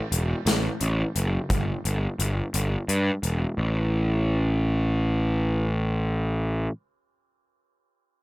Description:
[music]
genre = quiet-loud alternative rock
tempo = 58 BPM (dotted quarters)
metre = 6/8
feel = straight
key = unclear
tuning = A4 = 440 Hz
[part]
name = fuzz picked electric bass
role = bass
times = 0.1-6.7 s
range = E1 to G2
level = -23 LUFS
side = equal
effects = overdrive
[part]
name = big rock drum kit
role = drums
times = 0.1-3.4 s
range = hi-hat, kick drum, snare drum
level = -28 LUFS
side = left 1 dB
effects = none
[sound]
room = little or no reverb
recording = none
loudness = -23 LUFS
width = side -19 dB against mid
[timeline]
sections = 0.0-3.6 A section; 3.6-7.7 B section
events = none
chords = none

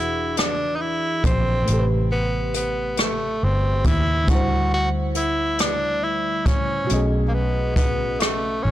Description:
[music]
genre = slow six-eight R&B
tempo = 46 BPM (dotted quarters)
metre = 6/8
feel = straight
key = A dorian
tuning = A4 = 440 Hz
[part]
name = clear tenor saxophone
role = melody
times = 0.0-8.7 s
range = A3 to F#4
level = -24 LUFS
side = equal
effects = ping-pong delay
[part]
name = mellow FM electric piano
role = accompaniment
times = 0.0-8.7 s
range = A2 to D#5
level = -27 LUFS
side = left 1 dB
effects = chorus
[part]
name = vintage muted fingered electric bass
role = bass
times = 0.0-8.7 s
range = E1 to D#2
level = -24 LUFS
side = equal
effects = transformer saturation
[part]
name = jazz brush drum kit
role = drums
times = 0.4-8.4 s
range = hi-hat, kick drum, rim click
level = -23 LUFS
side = equal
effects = soft clipping on snare
[sound]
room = studio ambience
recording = blown-out, overdriven recording, overdrive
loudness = -19 LUFS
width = side -13 dB against mid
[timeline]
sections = 0.0-8.7 A section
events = none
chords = 0.0 E9; 1.7 Am9; 4.3 D7sus4; 6.9 B13

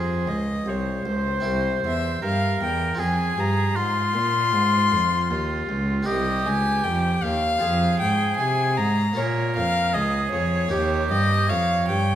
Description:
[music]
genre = classical, baroque-style sonata movement with continuo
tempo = 78 BPM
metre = 4/4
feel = rubato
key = unclear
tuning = A4 = 440 Hz
[part]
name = warm violin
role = melody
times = 0.0-12.2 s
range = C5 to C6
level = -24 LUFS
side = left 4 dB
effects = none
[part]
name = clear oboe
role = second line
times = 0.0-12.2 s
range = F4 to Db5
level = -28 LUFS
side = right 5 dB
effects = none
[part]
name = harpsichord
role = accompaniment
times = 0.0-12.2 s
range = C2 to Bb4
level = -30 LUFS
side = equal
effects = none
[part]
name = rich cello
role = bass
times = 0.0-12.2 s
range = C2 to C3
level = -25 LUFS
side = right 2 dB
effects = none
[sound]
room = moderate scoring stage reverb, RT60 1.7 s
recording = none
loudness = -20 LUFS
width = side -11 dB against mid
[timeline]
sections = 0.0-12.2 A section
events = none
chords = 0.0 Fm; 1.5 C7; 3.0 Fm; 6.1 Cm7; 7.6 Fm; 9.2 Bbm7; 10.7 Eb7

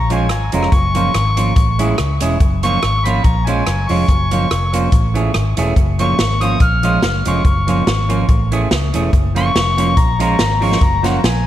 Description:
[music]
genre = ska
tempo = 143 BPM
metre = 4/4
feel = swing 54% on 8ths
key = F# major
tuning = A4 = 442 Hz
[part]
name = mellow harmonica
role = melody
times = 0.0-11.5 s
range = F#5 to E#6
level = -20 LUFS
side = left 2 dB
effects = tape echo
[part]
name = vintage muted fingered electric bass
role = bass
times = 0.0-11.5 s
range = E1 to C#2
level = -18 LUFS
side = equal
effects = none
[part]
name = semi-hollow electric guitar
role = accompaniment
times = 0.1-11.3 s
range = E3 to G#4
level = -20 LUFS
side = right 4 dB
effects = spring reverb, tape echo
[part]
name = swinging big-band drum kit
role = drums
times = 0.1-11.3 s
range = hi-hat, kick drum, rim click, snare drum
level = -17 LUFS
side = equal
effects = none
[sound]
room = light reverb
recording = none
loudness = -13 LUFS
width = side -12 dB against mid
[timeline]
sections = 0.0-11.5 A section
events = none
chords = 0.0 A#m7; 0.7 F#maj7; 1.6 Amaj7; 2.4 F#maj7; 3.2 A#m7; 4.1 F#maj7; 4.9 Amaj7; 5.8 F#maj7; 6.6 A#m7; 7.4 F#maj7; 8.3 Amaj7; 9.1 F#maj7; 10.0 A#m7; 10.8 F#maj7

